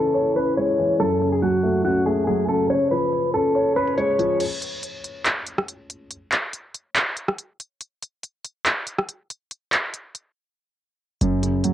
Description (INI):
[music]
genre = hip hop, trap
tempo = 141 BPM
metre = 4/4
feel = half-time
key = F# minor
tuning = A4 = 440 Hz
[part]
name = mellow electric guitar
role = melody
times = 0.0-4.4 s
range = F#4 to C#5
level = -21 LUFS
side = left 1 dB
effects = spring reverb, cassette tape, analog delay
[part]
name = dark concert grand piano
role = accompaniment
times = 0.0-4.4, 11.2-11.7 s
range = F#2 to C#5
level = -22 LUFS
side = equal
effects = low-pass filter
[part]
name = trap drum kit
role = drums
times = 0.1-11.7 s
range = crash cymbal, handclaps, hi-hat, rim click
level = -23 LUFS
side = equal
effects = cassette tape
[part]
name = short 808-style bass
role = bass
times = 11.2-11.6 s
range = F#1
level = -25 LUFS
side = right 1 dB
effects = none
[sound]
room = light reverb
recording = home recording on cassette, low-pass filter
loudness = -20 LUFS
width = side -11 dB against mid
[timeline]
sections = 0.0-4.4 A section; 4.4-11.7 B section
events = filter sweep 0.0-4.4; break 4.4-11.2; filter sweep on grand piano 4.4-11.2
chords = 0.0 C#m; 1.0 F#m; 2.7 C#; 4.4 N.C.; 11.2 F#5